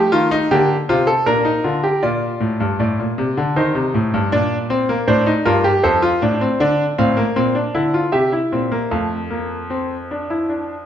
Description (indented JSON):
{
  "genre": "classical, baroque-style 3-part fugue for grand piano",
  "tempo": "78 BPM",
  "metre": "3/4",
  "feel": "straight",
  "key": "Bb major, F major from 6.6 s",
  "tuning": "A4 = 440 Hz",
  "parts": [
    { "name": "clear grand piano", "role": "solo", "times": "0.0-10.8 s", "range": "F2 to F5", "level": "-16 LUFS", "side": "equal", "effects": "none" }
  ],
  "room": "wet recital hall reverb, RT60 1.5 s",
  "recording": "minimal, uncompressed stereo recording",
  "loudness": "-16 LUFS",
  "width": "side -9 dB against mid",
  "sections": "0.0-2.0 A section; 2.0-10.9 B section",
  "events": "none",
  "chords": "0.0 F7; 1.3 Bb; 3.6 Adim; 4.3 Gm/Bb; 5.8 F; 6.6 Dm; 7.4 Bbadd9; 8.1 C; 8.9 F"
}